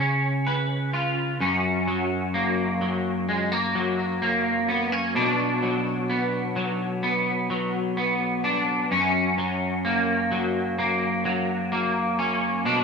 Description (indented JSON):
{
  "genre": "dream pop",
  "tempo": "64 BPM",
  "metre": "4/4",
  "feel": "straight",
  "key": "F# major",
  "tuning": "A4 = 437 Hz",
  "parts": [
    { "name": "electric guitar at the edge of break-up", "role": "solo", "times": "0.0-12.8 s", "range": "F#2 to B4", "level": "-22 LUFS", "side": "equal", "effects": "ensemble chorus, ping-pong delay" }
  ],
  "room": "wet small room reverb, RT60 0.6 s",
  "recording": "rough home demo mix",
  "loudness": "-22 LUFS",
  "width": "side -5 dB against mid",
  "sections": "0.0-1.4 A section; 1.4-12.8 B section",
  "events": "none",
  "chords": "0.0 C#7; 1.4 F#; 5.2 Bm; 8.9 F#",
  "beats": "0.47 | 1.41 2.35 3.28 4.22 | 5.16 6.10 7.03 7.97 | 8.91 9.85 10.78 11.72 | 12.66"
}